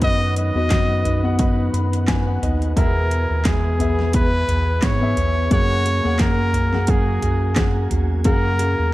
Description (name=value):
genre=piano-driven pop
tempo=87 BPM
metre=4/4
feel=swing 56% on 16ths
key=B major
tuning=A4 = 440 Hz
part: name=warm trumpet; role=melody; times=0.0-8.9 s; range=G#4 to D#5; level=-24 LUFS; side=equal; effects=none
part: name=warm upright piano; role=accompaniment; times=0.0-8.9 s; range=B2 to B5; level=-26 LUFS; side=left 4 dB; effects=none
part: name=tonewheel organ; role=sustained chords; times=0.0-8.9 s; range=D#3 to G#4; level=-33 LUFS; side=right 1 dB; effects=chorus vibrato, lush chorus
part: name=fingerpicked steel-string acoustic guitar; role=riff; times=0.0-8.9 s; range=E3 to B4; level=-29 LUFS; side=right 4 dB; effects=none
part: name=round analog bass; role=bass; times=0.0-8.9 s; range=D#2 to G#2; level=-21 LUFS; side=equal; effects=none
part: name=pop drum kit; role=drums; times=0.0-8.8 s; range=handclaps, hi-hat, kick drum, snare drum, toms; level=-21 LUFS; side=equal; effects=overdrive
room=little or no reverb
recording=dark, warm production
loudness=-16 LUFS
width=side -17 dB against mid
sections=0.0-8.9 A section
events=upright piano fill 1.4-2.8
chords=0.0 B; 2.8 E; 5.5 F#add9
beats=| 0.02 0.71 1.39 2.08 | 2.77 3.45 4.14 4.83 | 5.51 6.20 6.88 7.57 | 8.26